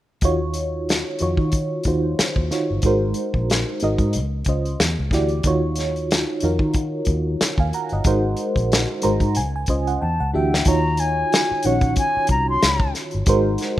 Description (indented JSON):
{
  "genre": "R&B, neo-soul",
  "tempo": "92 BPM",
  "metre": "4/4",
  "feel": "swing 57% on 16ths",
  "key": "Eb dorian",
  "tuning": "A4 = 438 Hz",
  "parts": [
    { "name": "FM electric piano with tremolo", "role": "accompaniment", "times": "0.2-13.8 s", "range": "Db3 to Bb5", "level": "-22 LUFS", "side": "right 1 dB", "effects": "phaser" },
    { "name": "vintage muted fingered electric bass", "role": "bass", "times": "0.2-13.6 s", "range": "G1 to Eb3", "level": "-23 LUFS", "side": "equal", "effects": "none" },
    { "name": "warm soul drum kit", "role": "drums", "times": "0.2-13.8 s", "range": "hi-hat, kick drum, snare drum", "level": "-21 LUFS", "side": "equal", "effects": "none" },
    { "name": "concert flute", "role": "melody", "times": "10.0-12.9 s", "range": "Gb5 to C6", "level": "-22 LUFS", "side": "left 1 dB", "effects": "slapback echo" }
  ],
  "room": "small room ambience",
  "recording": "rough home demo mix",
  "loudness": "-18 LUFS",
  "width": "side -14 dB against mid",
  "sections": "0.2-10.7 A section; 10.7-13.8 B section",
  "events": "FM electric piano fill 8.7-10.7; drum fill 10.0-10.7",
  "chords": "0.2 Ebm9; 2.8 Ab7; 4.1 Dbmaj9; 4.8 Em9; 5.4 Ebm9; 8.0 Ab7; 9.4 Dbmaj9; 10.0 Em9; 10.7 Ebm9; 13.3 Ab7"
}